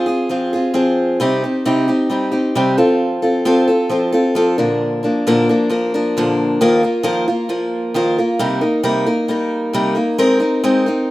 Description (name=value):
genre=rock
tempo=133 BPM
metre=4/4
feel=straight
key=C minor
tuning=A4 = 440 Hz
part: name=picked steel-string acoustic guitar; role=solo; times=0.0-11.1 s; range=Bb2 to Bb4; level=-14 LUFS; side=equal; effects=none
room=studio reverb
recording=rough home demo mix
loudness=-14 LUFS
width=side -17 dB against mid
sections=0.0-6.6 A section; 6.6-11.1 B section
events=none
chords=0.0 Fm; 1.2 Cm; 2.8 F; 4.6 Bb; 6.6 Ebsus2; 8.4 Cm7; 10.2 Abadd9